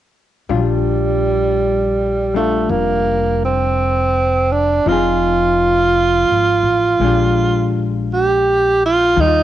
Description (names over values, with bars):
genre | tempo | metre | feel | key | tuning
jazz ballad | 55 BPM | 4/4 | swing 68% on 8ths | Bb major | A4 = 440 Hz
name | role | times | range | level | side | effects
breathy tenor saxophone | melody | 0.5-9.4 s | G3 to G4 | -15 LUFS | right 3 dB | cassette tape
hollow-body jazz guitar | accompaniment | 0.5-9.4 s | Eb3 to Ab4 | -23 LUFS | left 10 dB | cassette tape
upright bass | bass | 0.5-9.4 s | F1 to Eb2 | -20 LUFS | left 2 dB | none
room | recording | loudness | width
light reverb, studio reverb | home recording on cassette, nothing above 10.8 kHz | -13 LUFS | side -12 dB against mid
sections
0.5-9.4 A section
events
none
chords
0.5 Bb6; 4.9 Fm7; 7.0 Bb6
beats
| 0.50 1.60 2.70 3.78 | 4.86 5.94 7.02 8.10 | 9.18